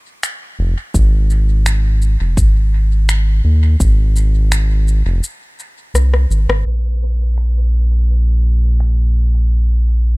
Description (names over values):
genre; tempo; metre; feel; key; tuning
ambient dub; 84 BPM; 4/4; straight; unclear; A4 = 440 Hz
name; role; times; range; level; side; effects
electronic finger snaps, shaker and rim click; drums; 0.2-9.0 s; none; -24 LUFS; left 2 dB; overdrive, dub echo
round analog bass; bass; 0.6-10.2 s; F1 to Eb2; -12 LUFS; equal; none
electronic kick drum; drums; 0.9-4.0 s; none; -14 LUFS; equal; none
room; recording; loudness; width
digital ambience; low-pass filter; -12 LUFS; side -26 dB against mid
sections
0.0-6.7 A section; 6.7-10.2 B section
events
break 5.2-6.7; drum fill 5.9-6.7; filter sweep 6.7-10.2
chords
none